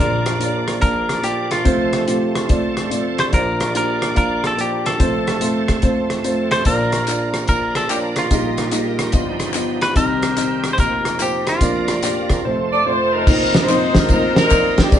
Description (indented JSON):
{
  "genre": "uptempo gospel",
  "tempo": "145 BPM",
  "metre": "4/4",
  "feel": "swing 66% on 8ths",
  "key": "Bb major",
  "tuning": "A4 = 440 Hz",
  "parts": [
    { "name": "clean electric guitar", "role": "melody", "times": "0.0-12.7 s", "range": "F4 to C5", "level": "-22 LUFS", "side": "equal", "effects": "none" },
    { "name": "dark upright piano", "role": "accompaniment", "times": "0.0-15.0 s", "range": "F1 to A5", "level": "-21 LUFS", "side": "left 1 dB", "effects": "none" },
    { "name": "bright tonewheel organ", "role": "sustained chords", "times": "0.0-15.0 s", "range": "Bb2 to D5", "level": "-25 LUFS", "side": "right 3 dB", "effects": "overdrive, chorus vibrato, slow rotary speaker" },
    { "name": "warm soul drum kit", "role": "drums", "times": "0.3-15.0 s", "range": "crash cymbal, hi-hat, kick drum, ride cymbal, rim click, snare drum", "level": "-19 LUFS", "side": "equal", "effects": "none" },
    { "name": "tambourine and handclaps", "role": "percussion", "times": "6.7-15.0 s", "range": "none", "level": "-31 LUFS", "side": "left 2 dB", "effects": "none" },
    { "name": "mellow horn section", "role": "melody", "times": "12.7-15.0 s", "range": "D4 to D5", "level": "-17 LUFS", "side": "equal", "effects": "none" }
  ],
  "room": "wet stone room reverb, RT60 0.9 s",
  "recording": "band playing live in one room, nothing above 10.5 kHz",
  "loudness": "-16 LUFS",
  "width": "side -10 dB against mid",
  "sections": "0.0-13.3 A section; 13.3-15.0 B section",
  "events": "none",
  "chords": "0.0 Bb; 1.7 F; 3.3 Bb; 5.0 F; 6.7 Bb; 8.3 Eb/Bb; 9.1 Gaug7; 10.0 Cm; 10.8 F9sus4; 11.6 Bb/F; 12.4 F; 13.3 F7sus4",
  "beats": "0.40 0.82 1.24 | 1.66 2.08 2.50 2.91 | 3.33 3.75 4.16 4.58 | 5.00 5.41 5.83 6.24 | 6.65 7.07 7.48 7.89 | 8.31 8.72 9.13 9.55 | 9.96 10.37 10.79 11.20 | 11.61 12.03 12.44 12.86 | 13.27 13.68 14.10 14.51 | 14.92"
}